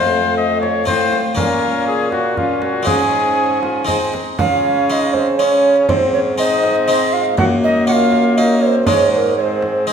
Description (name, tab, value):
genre	classical, renaissance-style consort dance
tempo	120 BPM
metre	3/4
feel	straight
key	Db major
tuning	A4 = 444 Hz
part	mellow cornet	melody	0.0-9.9 s	Bb3 to Eb5	-22 LUFS	left 6 dB	none
part	mellow hollow alto recorder	second line	0.0-9.9 s	Bb4 to Ab5	-17 LUFS	right 3 dB	none
part	harpsichord	accompaniment	0.0-9.9 s	F2 to Eb4	-22 LUFS	left 2 dB	none
part	warm viola	accompaniment	0.0-9.9 s	Ab3 to Db4	-21 LUFS	left 2 dB	none
part	warm bassoon	bass	0.0-9.9 s	F2 to Db3	-22 LUFS	right 2 dB	none
part	frame drum	percussion	0.6-9.9 s	none	-24 LUFS	right 1 dB	none
room	wet recital hall reverb, RT60 1.5 s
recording	none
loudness	-13 LUFS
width	side -7 dB against mid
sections	0.0-4.4 A section; 4.4-9.9 B section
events	none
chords	0.0 F; 1.4 Bbm; 2.9 Absus4; 3.9 Ab; 4.4 Db; 5.9 Ab; 7.4 Gb; 8.9 Absus4; 9.4 Ab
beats	0.37 0.87 | 1.37 1.87 2.37 | 2.87 3.37 3.88 | 4.39 4.89 5.39 | 5.88 6.38 6.88 | 7.38 7.87 8.37 | 8.87 9.37 9.87